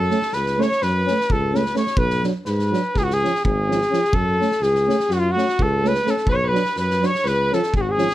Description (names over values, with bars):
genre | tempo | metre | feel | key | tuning
balkan folk, Balkan brass band | 252 BPM (eighths) | 9/8 | straight | F# harmonic minor | A4 = 436 Hz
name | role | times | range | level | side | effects
mellow trumpet | melody | 0.0-8.1 s | E#4 to C#5 | -22 LUFS | right 1 dB | none
clear alto saxophone | second line | 0.0-8.1 s | E#4 to C#5 | -25 LUFS | left 2 dB | none
warm tuba | bass | 0.0-8.1 s | G#1 to G#2 | -24 LUFS | equal | none
mellow euphonium | accompaniment | 0.1-8.1 s | E#3 to A3 | -24 LUFS | right 5 dB | none
warm euphonium | accompaniment | 0.1-8.1 s | C#4 to D4 | -28 LUFS | left 6 dB | none
loose indie drum kit | percussion | 0.1-8.1 s | kick drum, snare drum | -27 LUFS | equal | none
room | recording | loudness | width
light reverb | none | -18 LUFS | side -14 dB against mid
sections
0.0-8.1 A section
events
none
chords
0.0 F#m; 2.0 Bm; 2.9 C#; 4.1 F#m; 6.3 Bm; 7.2 C#